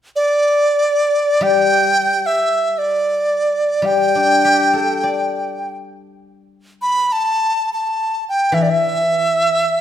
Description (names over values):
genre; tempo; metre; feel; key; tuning
chinese traditional, Chinese chamber ensemble; free time; none; none; unclear; A4 = 439 Hz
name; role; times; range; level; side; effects
dizi; melody; 0.2-9.8 s; D5 to B5; -15 LUFS; right 1 dB; none
guzheng; accompaniment; 1.4-9.8 s; E3 to D5; -19 LUFS; left 5 dB; none
room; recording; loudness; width
moderate recital hall reverb, RT60 1.5 s; none; -14 LUFS; side -10 dB against mid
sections
0.0-8.5 A section; 8.5-9.8 B section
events
none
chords
none